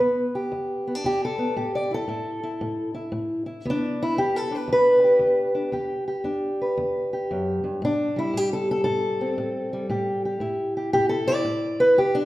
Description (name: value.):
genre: acoustic country blues, solo or duo.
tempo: 115 BPM.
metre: 4/4.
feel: swing 65% on 8ths.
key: unclear.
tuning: A4 = 440 Hz.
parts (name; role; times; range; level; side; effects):
fingerpicked steel-string acoustic guitar; solo; 0.0-12.2 s; E2 to D5; -21 LUFS; equal; none.
room: wet recital hall reverb, RT60 1.4 s.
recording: recorded in a church or concert hall.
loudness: -22 LUFS.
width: side -16 dB against mid.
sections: 0.0-12.2 A section.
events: steel-string acoustic guitar solo 0.0-12.2.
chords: 0.0 Em7; 1.6 A5; 3.6 Em7; 7.8 Am7.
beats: 0.51 1.03 | 1.55 2.08 2.60 3.12 | 3.65 4.17 4.69 5.21 | 5.74 6.26 6.78 7.30 | 7.82 8.34 8.86 9.38 | 9.90 10.42 10.94 11.46 | 11.98.